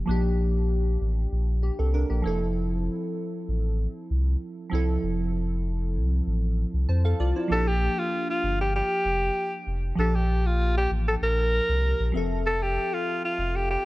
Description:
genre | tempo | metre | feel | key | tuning
afrobeats | 97 BPM | 4/4 | straight | unclear | A4 = 440 Hz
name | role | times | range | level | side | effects
glassy digital keys | accompaniment | 0.0-13.9 s | F3 to A5 | -30 LUFS | equal | chorus, phaser
warm sub bass | bass | 0.0-13.8 s | F1 to F2 | -25 LUFS | equal | none
clear alto saxophone | melody | 7.5-13.9 s | F4 to Bb4 | -26 LUFS | equal | none
room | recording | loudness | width
light reverb, studio reverb | worn, warbling old tape, cassette tape, warbly pitch drift | -23 LUFS | side -18 dB against mid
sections
0.0-7.5 A section; 7.5-13.9 B section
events
none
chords
0.0 Bb6; 2.2 Fmaj7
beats
| 0.08 0.70 1.32 1.94 | 2.56 3.17 3.79 4.41 | 5.03 5.65 6.27 6.89 | 7.50 8.12 8.74 9.36 | 9.98 10.60 11.22 11.84 | 12.45 13.07 13.69

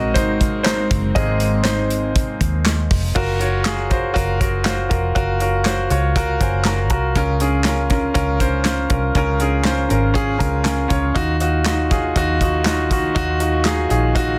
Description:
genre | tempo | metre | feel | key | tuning
piano-driven pop | 120 BPM | 4/4 | straight | unclear | A4 = 441 Hz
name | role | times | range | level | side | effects
clear concert grand piano | accompaniment | 0.0-14.4 s | Db3 to Bb5 | -22 LUFS | equal | plate reverb
warm chamber string section | sustained chords | 0.0-3.1, 11.1-14.4 s | Eb3 to Gb4 | -30 LUFS | equal | none
vintage muted fingered electric bass | bass | 0.0-14.4 s | F1 to Eb2 | -24 LUFS | equal | none
natural country drum kit | drums | 0.2-14.3 s | crash cymbal, handclaps, hi-hat, kick drum, snare drum | -24 LUFS | equal | none
room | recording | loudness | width
light reverb | dense, heavily limited modern master | -18 LUFS | mono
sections
0.0-3.2 A section; 3.2-14.4 B section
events
grand piano solo 0.0-3.2; grand piano fill 5.7-7.2, 10.2-11.2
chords
0.0 Abadd9; 3.2 Gbmaj7; 7.2 Db6; 11.2 Ebmadd9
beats
0.15 0.66 | 1.16 1.65 2.15 2.65 | 3.15 3.65 4.15 4.65 | 5.15 5.65 6.15 6.66 | 7.16 7.66 8.15 8.65 | 9.15 9.65 10.16 10.66 | 11.16 11.66 12.16 12.66 | 13.16 13.66 14.16

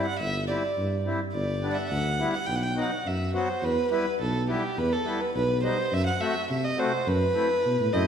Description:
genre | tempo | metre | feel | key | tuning
klezmer | 105 BPM | 2/4 | straight | E harmonic minor from 3.6 s | A4 = 440 Hz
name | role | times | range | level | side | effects
dark violin | melody | 0.0-8.1 s | G4 to G5 | -28 LUFS | right 2 dB | none
accordion | accompaniment | 0.0-8.1 s | F#3 to F#4 | -31 LUFS | left 2 dB | none
breathy tuba | bass | 0.2-8.1 s | G1 to C3 | -29 LUFS | equal | none
room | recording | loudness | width
wet recital hall reverb, RT60 1.6 s | recorded in a church or concert hall | -24 LUFS | side -8 dB against mid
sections
0.0-3.6 A section; 3.6-8.1 B section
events
none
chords
0.0 C/G; 1.3 G; 2.5 B; 3.6 Em; 5.9 F#dim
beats
| 0.20 0.77 | 1.34 1.91 | 2.48 3.06 | 3.63 4.20 | 4.77 5.35 | 5.92 6.49 | 7.06 7.64

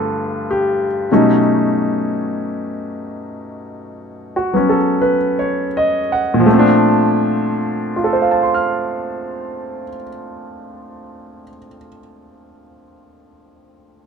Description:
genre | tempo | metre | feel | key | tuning
jazz | 40-49 BPM | 4/4 | swing 66% on 8ths | unclear | A4 = 440 Hz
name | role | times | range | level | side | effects
clear grand piano | accompaniment | 0.0-14.1 s | G2 to F6 | -15 LUFS | equal | none
room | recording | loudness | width
moderate studio reverb, RT60 0.7 s | none | -14 LUFS | side -6 dB against mid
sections
0.0-1.1 A section; 1.1-6.5 B section; 6.5-12.4 C section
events
slowing down 0.0-6.5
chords
0.0 G7; 1.1 B7; 6.5 Bbmaj9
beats
| 1.09 2.34 3.63 5.00 | 6.46 7.95 9.43 10.91

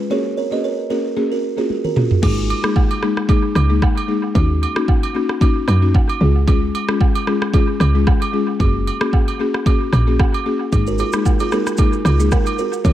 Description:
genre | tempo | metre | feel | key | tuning
afrobeats | 113 BPM | 4/4 | swing 55% on 16ths | unclear | A4 = 440 Hz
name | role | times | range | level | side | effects
buzzing marimba with soft mallets | accompaniment | 0.0-12.9 s | G#3 to G#4 | -20 LUFS | left 3 dB | analog delay
buzzing kalimba | riff | 0.1-2.1, 10.9-12.9 s | D#4 to D#5 | -23 LUFS | right 6 dB | analog delay
afro-pop drum kit | drums | 1.7-12.9 s | crash cymbal, kick drum, rim click, shaker, toms | -18 LUFS | equal | none
woody log drum bass | bass | 2.2-12.9 s | F#1 to F#2 | -16 LUFS | equal | none
agogo bells and woodblock | percussion | 2.2-12.9 s | none | -26 LUFS | right 6 dB | analog delay
room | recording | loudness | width
light reverb, small room ambience | echo-heavy mix | -15 LUFS | side -12 dB against mid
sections
0.0-2.2 A section; 2.2-12.9 B section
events
drum fill 1.7-2.2; hi-hats muted 2.2-10.7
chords
0.1 F#add9; 2.2 G#sus2; 4.4 D#m7; 6.2 C#; 8.6 F#add9; 10.7 G#sus2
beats
| 0.10 0.64 1.17 1.70 | 2.23 2.76 3.29 3.82 | 4.35 4.88 5.41 5.95 | 6.48 7.01 7.54 8.07 | 8.60 9.13 9.66 10.19 | 10.72 11.25 11.79 12.32 | 12.85

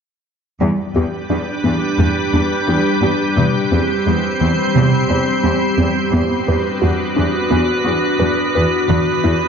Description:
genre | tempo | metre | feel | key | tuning
cinematic | 87 BPM | 4/4 | straight | unclear | A4 = 440 Hz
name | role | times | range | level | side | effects
icy glass pad | sustained chords | 1.1-9.5 s | G3 to C5 | -17 LUFS | equal | chorus, built-in reverb
tight sequenced synth | arpeggios | 0.6-9.4 s | C3 to B4 | -21 LUFS | right 2 dB | chorus, ping-pong delay
rich symphonic cello section | bass | 0.6-9.3 s | E2 | -19 LUFS | left 1 dB | none
room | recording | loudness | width
wet scoring stage reverb, RT60 1.6 s | dark, warm production, nothing above 7.5 kHz | -14 LUFS | side -6 dB against mid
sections
0.6-9.5 A section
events
build-up 0.6-9.5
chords
0.6 G/E; 3.4 C/E; 6.1 Bm/E; 8.9 Em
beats
| 0.61 1.30 2.00 2.68 | 3.37 4.06 4.75 5.44 | 6.13 6.82 7.51 8.20 | 8.89

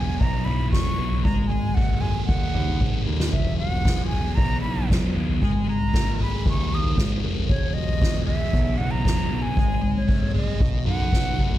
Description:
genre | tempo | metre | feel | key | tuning
psychedelic rock | 116 BPM | 4/4 | straight | E lydian | A4 = 436 Hz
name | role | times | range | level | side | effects
mellow silver concert flute | melody | 0.0-11.6 s | C#5 to D#6 | -31 LUFS | right 1 dB | slapback echo
thick fuzz guitar | riff | 0.0-11.6 s | B2 to G#4 | -28 LUFS | equal | distortion, phaser
growling picked electric bass | bass | 0.0-11.6 s | E1 to F#2 | -27 LUFS | equal | overdrive
soft-mallet drum kit | drums | 0.2-11.6 s | kick drum, snare drum, toms | -23 LUFS | equal | none
room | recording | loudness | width
studio reverb | none | -20 LUFS | side -13 dB against mid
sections
0.0-11.6 A section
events
drum fill 2.8-3.3, 11.1-11.6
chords
0.0 Eadd9; 1.3 G#sus2; 3.3 Eadd9; 5.4 G#sus2; 7.5 Eadd9; 9.6 G#sus2; 10.6 B7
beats
0.21 0.74 | 1.26 1.78 2.30 2.82 | 3.34 3.86 4.38 4.90 | 5.42 5.94 6.46 6.98 | 7.50 8.02 8.54 9.05 | 9.57 10.09 10.61 11.13

